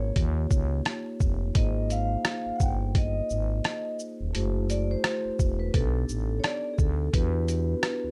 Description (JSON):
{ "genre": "hip hop, jazz-hop", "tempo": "86 BPM", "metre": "4/4", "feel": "swing 59% on 16ths", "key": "unclear", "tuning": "A4 = 440 Hz", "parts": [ { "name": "vibraphone with soft mallets", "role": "melody", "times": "0.0-8.1 s", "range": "G#4 to G5", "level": "-36 LUFS", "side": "equal", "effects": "slapback echo, plate reverb" }, { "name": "vibraphone with soft mallets", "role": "accompaniment", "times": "0.0-8.1 s", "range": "A3 to C#5", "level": "-36 LUFS", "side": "equal", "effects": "plate reverb" }, { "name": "growling FM bass", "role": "bass", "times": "0.0-8.1 s", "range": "D#1 to E2", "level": "-30 LUFS", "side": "equal", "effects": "none" }, { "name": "boom bap sampler-style drum kit", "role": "drums", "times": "0.2-8.0 s", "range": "hi-hat, kick drum, rim click, shaker", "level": "-28 LUFS", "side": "equal", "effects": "none" } ], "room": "light reverb", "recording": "dark, warm production", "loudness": "-27 LUFS", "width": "mono", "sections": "0.0-8.1 A section", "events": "none", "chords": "0.2 D#9; 1.6 G#6; 4.3 F#m7b5; 5.7 B7alt; 7.1 Em9" }